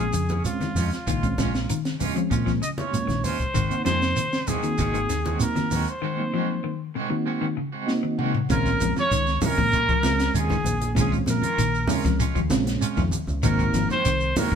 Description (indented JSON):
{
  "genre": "afrobeat",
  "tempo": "97 BPM",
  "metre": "4/4",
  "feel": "straight",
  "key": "Bb minor",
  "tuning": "A4 = 440 Hz",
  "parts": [
    { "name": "breathy trumpet", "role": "melody", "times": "0.0-14.6 s", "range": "F4 to Eb5", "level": "-27 LUFS", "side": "right 1 dB", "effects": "none" },
    { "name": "mellow reed electric piano", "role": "accompaniment", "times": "0.0-14.6 s", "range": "Gb3 to Gb5", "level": "-29 LUFS", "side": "right 4 dB", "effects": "fast tremolo" },
    { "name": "clean electric guitar", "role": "arpeggios", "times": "0.0-14.6 s", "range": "C3 to F3", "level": "-29 LUFS", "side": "left 8 dB", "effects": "vibrato effect" },
    { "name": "electric guitar at the edge of break-up", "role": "stabs", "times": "0.0-14.6 s", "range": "Eb3 to Gb4", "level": "-33 LUFS", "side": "right 5 dB", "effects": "tremolo" },
    { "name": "fingered electric bass", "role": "bass", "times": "0.0-14.6 s", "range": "Ab1 to Bb2", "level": "-27 LUFS", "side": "equal", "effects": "none" },
    { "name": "compact cocktail drum kit", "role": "drums", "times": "0.1-14.6 s", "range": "hi-hat, kick drum, snare drum, toms", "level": "-29 LUFS", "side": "left 1 dB", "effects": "none" },
    { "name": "shekere", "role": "percussion", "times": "0.1-14.6 s", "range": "none", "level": "-31 LUFS", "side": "right 3 dB", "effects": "none" },
    { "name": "congas", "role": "percussion", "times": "0.3-14.6 s", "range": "none", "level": "-31 LUFS", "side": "right 2 dB", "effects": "none" },
    { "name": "bright alto saxophone", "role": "second line", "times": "8.5-14.6 s", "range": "Ab4 to Db5", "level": "-32 LUFS", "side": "right 1 dB", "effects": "none" }
  ],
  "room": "light reverb",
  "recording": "band playing live in one room",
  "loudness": "-21 LUFS",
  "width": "side -7 dB against mid",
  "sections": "0.0-8.5 A section; 8.5-14.6 B section",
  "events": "break 6.0-8.5; reed electric piano fill 7.6-8.5; drum fill 7.9-8.5",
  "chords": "0.0 Bbm7; 3.5 Ab7; 8.5 Bbm7; 13.4 Ab7"
}